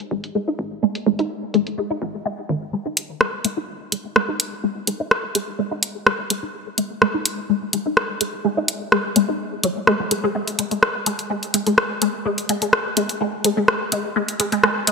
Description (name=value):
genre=minimal techno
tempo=126 BPM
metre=4/4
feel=straight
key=unclear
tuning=A4 = 439 Hz
part: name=punchy analog drum machine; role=drums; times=0.0-14.9 s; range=hi-hat, rim click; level=-19 LUFS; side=equal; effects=low-pass filter on hats, studio reverb, low-pass filter on snare
part: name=resonant blip pluck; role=riff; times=0.1-14.9 s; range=D#3 to D#4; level=-22 LUFS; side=left 1 dB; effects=phaser, ensemble chorus, vintage 12-bit sampler grit, ping-pong delay
part: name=hollow knocking FM bass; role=bass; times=0.1-2.7 s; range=G#1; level=-30 LUFS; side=left 1 dB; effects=tube saturation, high-pass filter
room=wet lush hall reverb, RT60 2.3 s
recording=none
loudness=-19 LUFS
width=side -5 dB against mid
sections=0.0-2.7 A section; 2.7-14.9 B section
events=build-up 2.7-14.9; filter sweep on synth arpeggio sound 2.7-14.9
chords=0.0 G#5